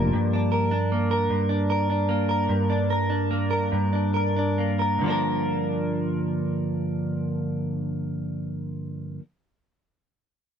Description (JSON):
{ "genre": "six-eight pop ballad", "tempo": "45-52 BPM (dotted quarters)", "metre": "6/8", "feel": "straight", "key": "G minor", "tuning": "A4 = 440 Hz", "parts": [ { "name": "direct-recorded clean electric guitar", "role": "accompaniment", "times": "0.0-9.2 s", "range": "G2 to Bb4", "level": "-23 LUFS", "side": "right 1 dB", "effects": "double-tracked left and right" }, { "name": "fingerpicked steel-string acoustic guitar", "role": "arpeggios", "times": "0.0-0.7 s", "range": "F3 to G4", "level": "-27 LUFS", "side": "left 8 dB", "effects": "none" } ], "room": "moderate booth ambience, RT60 0.2 s", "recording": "dry, close 1970s-style studio recording", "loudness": "-23 LUFS", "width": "side -8 dB against mid", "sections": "0.1-5.0 A section; 5.0-7.7 B section", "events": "slowing down 0.1-5.0", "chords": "0.1 Gm" }